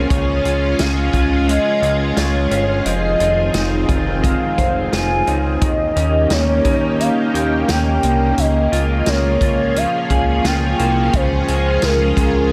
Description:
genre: dream pop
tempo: 87 BPM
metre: 4/4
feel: straight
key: Eb mixolydian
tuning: A4 = 442 Hz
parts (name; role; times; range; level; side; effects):
- string machine, full ensemble; sustained chords; 0.0-12.5 s; Eb3 to Ab4; -24 LUFS; equal; ensemble chorus
- electric guitar through a small old amp; arpeggios; 0.0-12.5 s; Db3 to C5; -24 LUFS; equal; lush chorus, tape echo
- chorused synth bass; bass; 0.0-12.5 s; F1 to Eb2; -22 LUFS; equal; none
- warm velvety synth lead; melody; 0.1-12.5 s; Bb4 to Ab5; -23 LUFS; equal; chorus, tape echo
- vintage drum kit; drums; 0.1-12.3 s; hi-hat, kick drum, snare drum; -24 LUFS; equal; none
room: light reverb, small room reverb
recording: none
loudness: -17 LUFS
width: mono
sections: 0.0-12.5 A section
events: none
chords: 0.1 Db; 2.9 Fm7; 5.6 Eb7; 8.4 Bbm7/Db; 11.1 Dbmaj7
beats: | 0.10 0.79 1.48 2.17 | 2.86 3.55 4.24 4.93 | 5.62 6.31 7.00 7.69 | 8.38 9.07 9.76 10.45 | 11.13 11.82 12.51

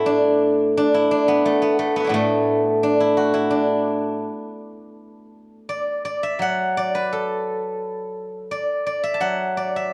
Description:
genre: chinese traditional, Chinese solo plucked strings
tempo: 85 BPM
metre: 2/4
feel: rubato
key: D gong mode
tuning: A4 = 439 Hz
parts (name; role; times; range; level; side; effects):
- steel-string zither; solo; 0.0-9.9 s; A2 to A5; -21 LUFS; equal; none
room: moderate concert hall reverb, RT60 1.8 s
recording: dark, warm production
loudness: -21 LUFS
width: mono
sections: 0.0-5.0 A section; 5.0-9.9 B section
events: none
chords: none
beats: 0.01 | 0.73 1.42 | 2.11 2.81 | 3.50 4.22 | 4.97 5.70 | 6.41 7.11 | 7.81 8.51 | 9.21

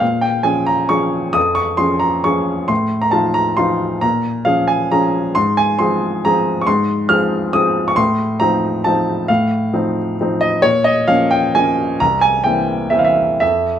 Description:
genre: classical, piano waltz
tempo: 113-146 BPM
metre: 3/4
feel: rubato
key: F minor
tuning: A4 = 441 Hz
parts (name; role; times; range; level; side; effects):
- clear baby grand piano; solo; 0.0-13.8 s; C2 to F6; -14 LUFS; equal; none
room: light reverb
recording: minimal, uncompressed stereo recording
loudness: -14 LUFS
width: side -9 dB against mid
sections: 0.0-13.8 A section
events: none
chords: 0.0 Bbm7; 2.7 F7/A; 4.0 Bbm7; 5.4 Fm/Ab; 8.0 F7/A; 10.6 Bbm; 12.0 C7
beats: | 0.01 0.47 0.92 | 1.36 1.80 2.26 | 2.70 3.13 3.59 | 4.03 4.46 4.92 | 5.35 5.79 6.24 | 6.67 7.09 7.53 | 7.97 8.40 8.85 | 9.29 9.73 10.19 | 10.63 11.07 11.54 | 12.00 12.44 12.91 | 13.41

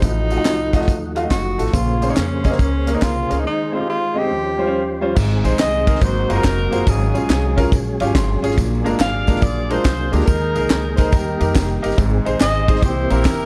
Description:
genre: uptempo gospel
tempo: 141 BPM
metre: 4/4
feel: swing 66% on 8ths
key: Ab major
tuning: A4 = 440 Hz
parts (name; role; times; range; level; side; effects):
- breathy tenor saxophone; melody; 0.0-5.0 s; C4 to G4; -25 LUFS; equal; none
- clear upright piano; accompaniment; 0.0-13.5 s; Ab2 to C6; -25 LUFS; equal; none
- tonewheel organ; sustained chords; 0.0-13.5 s; Eb2 to C5; -28 LUFS; equal; slow rotary speaker, chorus vibrato
- upright bass; bass; 0.0-13.5 s; F1 to F2; -24 LUFS; equal; none
- tight funk drum kit; drums; 0.0-13.4 s; crash cymbal, hi-hat, kick drum, ride cymbal, snare drum; -21 LUFS; equal; none
- tambourine and handclaps; percussion; 0.0-13.4 s; none; -36 LUFS; equal; none
- mellow saxophone section; melody; 5.6-13.5 s; Db4 to F5; -25 LUFS; equal; none
room: light reverb, small room ambience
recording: dark, warm production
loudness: -18 LUFS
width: mono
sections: 0.0-5.2 A section; 5.2-13.5 B section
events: upright piano fill 7.7-8.6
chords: 0.0 F7b9/A; 1.7 Bbm9; 3.5 Ab/Eb; 4.3 Eb13; 5.2 Ab; 6.0 Ab13; 6.9 Db/Ab; 8.6 Bb7; 10.3 Ebsus4; 11.1 Eb; 12.0 Ab; 12.8 C7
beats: | 0.02 0.45 0.88 1.31 | 1.74 2.17 2.60 3.02 | 3.45 3.88 4.31 4.74 | 5.16 5.59 6.02 6.44 | 6.87 7.30 7.72 8.15 | 8.57 9.00 9.43 9.85 | 10.28 10.70 11.13 11.55 | 11.98 12.40 12.83 13.26

